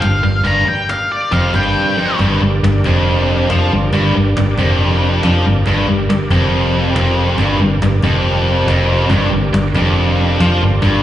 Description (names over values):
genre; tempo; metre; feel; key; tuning
blues rock power trio and southern rock; 139 BPM; 4/4; straight; G minor; A4 = 441 Hz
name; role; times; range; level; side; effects
octave-fuzz lead guitar; melody; 0.0-2.2 s; D5 to Bb5; -17 LUFS; left 2 dB; distortion, slapback echo, analog delay
overdriven tonewheel organ; sustained chords; 0.0-11.0 s; D4 to Eb5; -24 LUFS; right 2 dB; slow rotary speaker, chorus vibrato
tight distorted guitar; riff; 0.0-11.0 s; F2 to F3; -15 LUFS; equal; distortion, slapback echo
fingered electric bass; bass; 0.0-11.0 s; F1 to F2; -16 LUFS; equal; none
cajon; drums; 0.0-11.0 s; none; -24 LUFS; equal; none
room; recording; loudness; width
little or no reverb; live gig heard through the venue's PA, recital hall reverb, nothing above 10.9 kHz; -12 LUFS; side -12 dB against mid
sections
0.0-2.2 A section; 2.2-9.1 B section; 9.1-11.0 B section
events
none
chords
0.0 Gm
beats
0.02 | 0.46 0.89 1.33 1.76 | 2.20 2.63 3.06 3.50 | 3.93 4.36 4.79 5.23 | 5.66 6.09 6.52 6.95 | 7.38 7.82 8.25 8.68 | 9.11 9.54 9.97 10.40 | 10.83